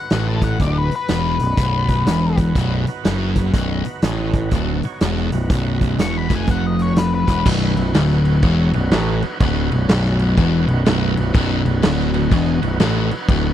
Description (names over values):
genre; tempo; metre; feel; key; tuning
blues rock power trio and southern rock; 123 BPM; 4/4; swing 63% on 8ths; B mixolydian; A4 = 440 Hz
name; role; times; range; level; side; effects
octave-fuzz lead guitar; melody; 0.0-2.4, 6.0-7.5 s; B4 to C#6; -25 LUFS; left 6 dB; distortion, tape echo
overdriven tonewheel organ; sustained chords; 0.0-13.5 s; B3 to C#5; -30 LUFS; right 6 dB; slow rotary speaker
sludgy distorted guitar; riff; 0.1-13.5 s; B1 to A2; -20 LUFS; left 1 dB; overdrive
overdriven picked electric bass; bass; 0.1-13.5 s; B0 to A1; -20 LUFS; equal; none
raw garage drum kit; drums; 0.1-13.4 s; crash cymbal, hi-hat, kick drum, snare drum; -21 LUFS; equal; none
room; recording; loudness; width
little or no reverb; dry, close 1970s-style studio recording; -15 LUFS; side -11 dB against mid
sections
0.0-7.5 A section; 7.5-13.5 B section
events
none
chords
0.0 B